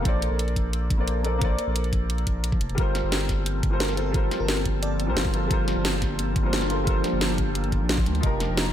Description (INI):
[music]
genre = liquid drum and bass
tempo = 176 BPM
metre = 4/4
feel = straight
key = G minor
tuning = A4 = 441 Hz
[part]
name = warm baby grand piano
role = accompaniment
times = 0.0-8.7 s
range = F3 to D5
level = -29 LUFS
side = left 1 dB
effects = analog chorus, tape echo
[part]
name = saturated sub bass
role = bass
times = 0.0-8.7 s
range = F1 to D2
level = -27 LUFS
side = equal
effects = none
[part]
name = drum and bass drum kit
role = drums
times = 0.1-8.7 s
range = hi-hat, snare drum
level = -29 LUFS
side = equal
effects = none
[part]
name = electronic kick drum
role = drums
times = 0.1-8.3 s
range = none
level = -25 LUFS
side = equal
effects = none
[part]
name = ethereal airy pad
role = sustained chords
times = 3.2-8.7 s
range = F3 to A5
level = -31 LUFS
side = equal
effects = ensemble chorus, built-in reverb, sidechain pumping
[part]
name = bell-like FM electric piano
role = melody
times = 3.8-5.1 s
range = Bb4 to D5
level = -35 LUFS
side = left 1 dB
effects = chorus, diffuse ambient delay
[sound]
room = light reverb, digital ambience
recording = none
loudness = -22 LUFS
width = side -10 dB against mid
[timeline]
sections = 0.0-8.7 A section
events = none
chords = 0.1 Bbmaj9; 2.8 Gm11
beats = | 0.05 0.39 0.73 1.07 | 1.42 1.76 2.10 2.44 | 2.78 3.12 3.46 3.80 | 4.14 4.48 4.83 5.17 | 5.51 5.85 6.19 6.53 | 6.87 7.21 7.55 7.89 | 8.23 8.57